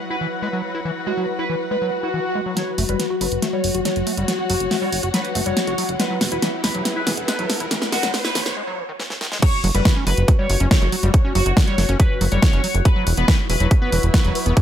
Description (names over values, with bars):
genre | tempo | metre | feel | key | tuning
psychedelic trance | 140 BPM | 4/4 | straight | unclear | A4 = 440 Hz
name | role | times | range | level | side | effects
overtone-sweeping drone | sustained chords | 0.0-14.6 s | F#3 to F#4 | -29 LUFS | left 3 dB | chorus, built-in reverb, sidechain pumping
dark studio string section | texture | 0.0-14.6 s | E4 to F#5 | -30 LUFS | left 3 dB | sidechain pumping
overdriven synth lead | melody | 0.1-14.3 s | F#4 to C#5 | -26 LUFS | equal | phaser, cassette tape, sidechain pumping, tape echo
overdriven acid bass | riff | 0.1-14.6 s | D#3 to F#4 | -28 LUFS | equal | auto-pan, sidechain pumping, tape echo
swell and riser | sound effects | 1.8-8.6 s | none | -31 LUFS | right 1 dB | none
big-room dance drum kit | drums | 2.6-14.6 s | crash cymbal, hi-hat, snare drum | -23 LUFS | equal | small room ambience
plucky analog bass | bass | 2.8-14.5 s | E1 to F#1 | -21 LUFS | equal | none
electronic kick drum | drums | 9.4-14.6 s | none | -16 LUFS | equal | small room ambience
room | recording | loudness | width
light reverb, digital ambience | high-pass filter | -17 LUFS | side -10 dB against mid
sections
0.0-2.6 A section; 2.6-9.4 B section; 9.4-14.6 C section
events
filter sweep on acid bass 0.0-2.6, 2.6-9.4; swell 1.8-2.6; build-up 2.6-9.4; drum fill 2.6-8.6, 9.0-9.4; riser 2.6-8.6; filter sweep on analog synth lead 2.6-9.4; filter sweep on synth drone 2.6-9.4; filter sweep 2.6-9.4; break 8.6-9.4; drop 9.4-14.6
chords
0.0 E5; 2.6 F#5; 6.0 E5; 9.4 F#5; 12.9 E5